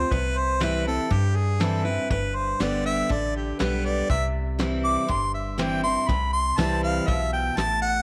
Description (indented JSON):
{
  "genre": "honky-tonk and classic country",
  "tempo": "121 BPM",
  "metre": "4/4",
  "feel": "straight",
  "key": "C major",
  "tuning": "A4 = 439 Hz",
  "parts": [
    { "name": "clear harmonica", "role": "second line", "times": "0.0-8.0 s", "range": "G4 to D6", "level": "-28 LUFS", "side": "equal", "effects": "none" },
    { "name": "picked steel-string acoustic guitar", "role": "accompaniment", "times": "0.0-8.0 s", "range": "G2 to G4", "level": "-30 LUFS", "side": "equal", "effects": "none" },
    { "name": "metallic FM bass", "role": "bass", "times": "0.0-8.0 s", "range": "G1 to G2", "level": "-30 LUFS", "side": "equal", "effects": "none" },
    { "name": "soft brush drum kit", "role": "drums", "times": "0.1-7.9 s", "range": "hi-hat, kick drum, snare drum", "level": "-32 LUFS", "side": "equal", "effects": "none" }
  ],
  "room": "moderate spring reverb, RT60 2.4 s",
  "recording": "none",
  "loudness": "-24 LUFS",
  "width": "mono",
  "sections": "0.0-8.0 A section",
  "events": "harmonica solo 0.0-8.0",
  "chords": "0.1 C; 2.1 G; 4.1 C"
}